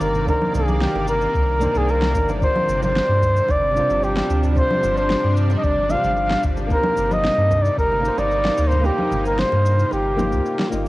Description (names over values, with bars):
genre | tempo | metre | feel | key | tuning
sunset chillout | 112 BPM | 4/4 | straight | unclear | A4 = 440 Hz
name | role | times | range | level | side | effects
trumpet with bucket mute | melody | 0.0-10.7 s | G4 to F5 | -20 LUFS | equal | cassette tape
flamenco guitar | accompaniment | 0.0-10.9 s | G3 to Eb5 | -28 LUFS | moving between left 3 dB and right 3 dB | auto-pan, cassette tape
shimmering ambient pad | sustained chords | 0.0-10.9 s | C3 to D5 | -26 LUFS | equal | chorus, built-in reverb, cassette tape
warm sub bass | bass | 0.0-10.9 s | G1 to G2 | -22 LUFS | equal | tube saturation
electronic shaker, congas and snare drum | drums | 0.0-10.9 s | none | -26 LUFS | equal | overdrive, small room reverb, cassette tape
bongos and congas | percussion | 0.0-10.7 s | none | -34 LUFS | right 5 dB | none
electronic kick drum | drums | 0.3-7.9 s | none | -23 LUFS | equal | small room reverb, cassette tape
room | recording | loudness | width
light reverb, studio reverb | home recording on cassette | -17 LUFS | side -18 dB against mid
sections
0.0-10.9 A section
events
kick drops out 8.8-10.9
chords
0.0 Cm9; 2.4 G7sus4; 6.7 Eb6/G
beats
| 0.28 0.81 1.35 1.88 | 2.42 2.96 3.49 4.03 | 4.56 5.10 5.63 6.17 | 6.71 7.24 7.78 8.31 | 8.85 9.38 9.92 10.46